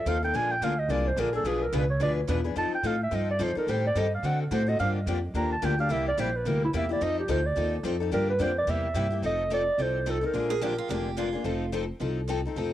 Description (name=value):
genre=acoustic string swing (jazz manouche)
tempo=216 BPM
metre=4/4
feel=swing 58% on 8ths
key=F mixolydian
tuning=A4 = 440 Hz
part: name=mellow clarinet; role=melody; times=0.0-11.0 s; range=E4 to Bb5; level=-28 LUFS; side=right 2 dB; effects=analog delay
part: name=upright bass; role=bass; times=0.0-12.7 s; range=F1 to D3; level=-30 LUFS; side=right 1 dB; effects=none
part: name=picked steel-string acoustic guitar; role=accompaniment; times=0.1-12.7 s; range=B2 to B4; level=-31 LUFS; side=left 7 dB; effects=cassette tape
part: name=picked steel-string acoustic guitar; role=accompaniment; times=0.1-12.7 s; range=B2 to B4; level=-38 LUFS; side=right 7 dB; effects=cassette tape
part: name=picked steel-string acoustic guitar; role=second line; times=10.5-11.7 s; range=F4 to Ab4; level=-34 LUFS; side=right 8 dB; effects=cassette tape
room=light reverb, studio ambience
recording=home recording on cassette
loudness=-25 LUFS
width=side -12 dB against mid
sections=0.0-9.2 A section; 9.2-12.7 B section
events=clarinet solo 0.0-9.2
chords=0.3 Bb7; 1.4 Bdim7; 2.6 F7; 3.7 Am7b5; 4.2 D7; 4.8 Gm7; 5.9 C7; 7.0 F7; 8.1 Gm7; 8.7 C7; 9.2 F7; 10.3 Bb7; 11.5 F7